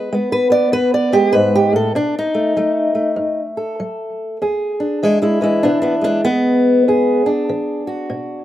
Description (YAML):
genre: acoustic country blues, solo or duo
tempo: 98 BPM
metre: 4/4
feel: swing 61% on 8ths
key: E mixolydian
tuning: A4 = 442 Hz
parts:
  - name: fingerpicked old ladder-braced acoustic guitar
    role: solo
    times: 0.0-8.4 s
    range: E2 to D5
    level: -14 LUFS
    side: equal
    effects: none
room: little or no reverb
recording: recorded outdoors, with no room sound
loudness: -14 LUFS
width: side -13 dB against mid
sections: 0.0-4.4 A section; 4.4-8.4 B section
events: steel-string acoustic guitar solo 0.0-4.4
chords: 0.0 E; 2.0 B7; 4.4 E7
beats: 0.11 0.73 1.34 | 1.95 2.57 3.18 3.79 | 4.41 5.02 5.64 6.25 | 6.86 7.48 8.09